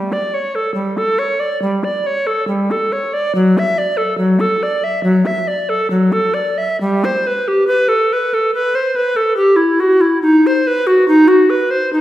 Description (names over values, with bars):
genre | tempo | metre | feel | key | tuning
classical, baroque-style fantasia for unaccompanied recorder | 70 BPM | 4/4 | rubato | G major | A4 = 441 Hz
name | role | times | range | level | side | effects
bright bass recorder | solo | 0.0-12.0 s | F#3 to E5 | -13 LUFS | equal | none
room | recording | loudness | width
wet recital hall reverb, RT60 1.3 s | heard from further back in the room | -13 LUFS | side -14 dB against mid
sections
0.0-12.0 A section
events
none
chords
none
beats
0.76 1.62 2.49 | 3.36 4.21 5.04 5.90 | 6.79 7.66 8.52 9.36 | 10.21 11.07 11.92